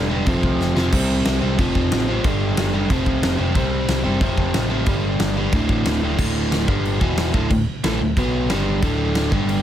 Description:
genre	punk rock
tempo	182 BPM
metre	4/4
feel	straight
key	unclear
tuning	A4 = 441 Hz
part	biting overdriven guitar	riff	0.0-9.6 s	D2 to C4	-20 LUFS	equal	none
part	overdriven picked electric bass	bass	0.0-9.6 s	D1 to C2	-24 LUFS	equal	none
part	big rock drum kit	drums	0.3-9.6 s	crash cymbal, kick drum, snare drum	-22 LUFS	equal	none
room	light reverb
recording	none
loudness	-17 LUFS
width	side -10 dB against mid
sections	0.0-6.2 A section; 6.2-9.6 B section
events	drum fill 0.6-0.9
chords	0.3 F5; 0.9 C5; 1.6 F; 2.2 G5; 2.9 F5; 3.6 C5; 4.2 F; 4.9 G5; 5.5 D5; 6.7 G5; 7.0 E5; 7.3 D5; 8.2 B5; 8.5 G5; 8.8 D5; 9.3 G5

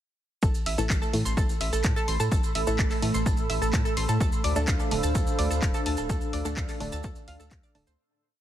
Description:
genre	melodic techno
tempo	127 BPM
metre	4/4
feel	straight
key	A minor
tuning	A4 = 441 Hz
part	analog pluck	arpeggios	0.4-7.9 s	A4 to A6	-33 LUFS	right 1 dB	chorus, sidechain pumping, dub echo
part	round analog bass	bass	0.4-8.0 s	D1 to A2	-29 LUFS	equal	sidechain pumping
part	swarming drone	drone	1.7-8.0 s	A2 to A3	-37 LUFS	right 2 dB	built-in reverb, sidechain pumping
part	electronic kick drum	drums	0.4-7.6 s	none	-27 LUFS	equal	overdrive
part	maracas	percussion	0.4-8.0 s	none	-39 LUFS	right 3 dB	none
part	granular cloud pad	texture	1.6-8.0 s	D4 to E6	-35 LUFS	right 3 dB	built-in reverb, sidechain pumping
part	punchy analog drum machine	drums	0.7-7.8 s	handclaps, hi-hat	-34 LUFS	equal	none
part	filtered dub chord stab	stabs	0.8-7.9 s	A2 to D4	-33 LUFS	left 1 dB	chorus, sidechain pumping, dub echo
part	dark analog pad	sustained chords	4.2-8.0 s	D4 to F5	-35 LUFS	right 1 dB	chorus, sidechain pumping
room	digital ambience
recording	heavily compressed radio sound, multiband compression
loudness	-24 LUFS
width	side -12 dB against mid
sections	0.4-8.0 drop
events	drop 0.4-8.0; fade-out 5.5-8.0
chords	0.4 Am; 4.2 Dm7

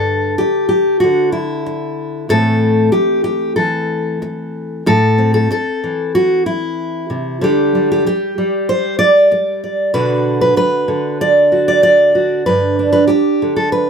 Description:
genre	folk, solo fingerstyle acoustic guitar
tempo	95 BPM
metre	4/4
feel	straight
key	A dorian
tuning	A4 = 440 Hz
part	fingerpicked steel-string acoustic guitar	solo	0.0-13.9 s	G2 to D5	-12 LUFS	equal	none
room	light reverb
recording	none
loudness	-12 LUFS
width	side -6 dB against mid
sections	0.0-4.9 A section; 4.9-13.9 B section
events	none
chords	0.0 Gsus2; 2.3 Am; 7.4 Dsus4; 9.9 Bm; 12.5 G

